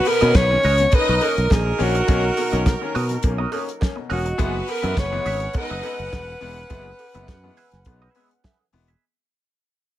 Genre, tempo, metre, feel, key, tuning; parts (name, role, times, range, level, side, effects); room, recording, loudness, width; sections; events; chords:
disco; 104 BPM; 4/4; straight; A4 = 440 Hz
breathy alto saxophone; melody; 0.0-8.4 s; F#4 to C#5; -22 LUFS; equal
clear studio string section; second line; 0.0-6.1 s; B3 to D#5; -27 LUFS; left 1 dB
bright grand piano; accompaniment; 0.1-8.9 s; B2 to C#4; -30 LUFS; left 8 dB; tube saturation
semi-hollow electric guitar; accompaniment; 0.1-9.0 s; F#4 to E5; -32 LUFS; right 6 dB; wah
damped 70s drum kit; drums; 0.1-9.0 s; hi-hat, kick drum, snare drum; -22 LUFS; equal
cowbell; percussion; 0.1-8.6 s; -34 LUFS; right 6 dB
fingered electric bass; bass; 0.2-8.9 s; E1 to B2; -23 LUFS; equal
warm horn section; stabs; 0.9-8.7 s; F#3 to F#5; -30 LUFS; right 2 dB
light reverb; -18 LUFS; side -13 dB against mid
0.0-9.0 A section
fade-out 0.0-9.0
0.0 Bmaj7; 4.4 F#9sus4